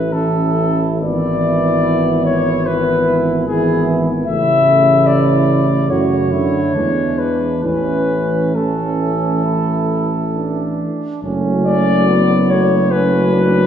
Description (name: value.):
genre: classical, hymn-like piece for brass band.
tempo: 66-76 BPM.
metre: 4/4.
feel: rubato.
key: A major.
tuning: A4 = 440 Hz.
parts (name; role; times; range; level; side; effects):
warm flugelhorn; melody; 0.0-13.7 s; G#4 to E5; -18 LUFS; left 4 dB; none.
mellow flugelhorn; second line; 0.0-13.7 s; B3 to F#4; -23 LUFS; right 6 dB; none.
mellow euphonium; accompaniment; 0.0-13.7 s; G#3 to C#4; -23 LUFS; left 1 dB; none.
mellow trombone; accompaniment; 0.0-13.7 s; C#3 to F#3; -19 LUFS; right 2 dB; none.
mellow tuba; bass; 0.0-13.7 s; F#1 to F#2; -20 LUFS; equal; none.
room: wet recital hall reverb, RT60 1.6 s.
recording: recorded in a church or concert hall.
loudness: -13 LUFS.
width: side -9 dB against mid.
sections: 0.0-11.2 A section; 11.2-13.7 B section.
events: none.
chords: 0.0 A; 1.0 E7/G#; 4.3 A; 5.9 F#m; 6.8 E7; 7.6 A; 11.2 F#m.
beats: 0.13 | 1.01 1.85 2.66 3.48 | 4.27 5.08 5.90 6.75 | 7.64 8.55 9.44 10.33 | 11.22 12.08 12.91.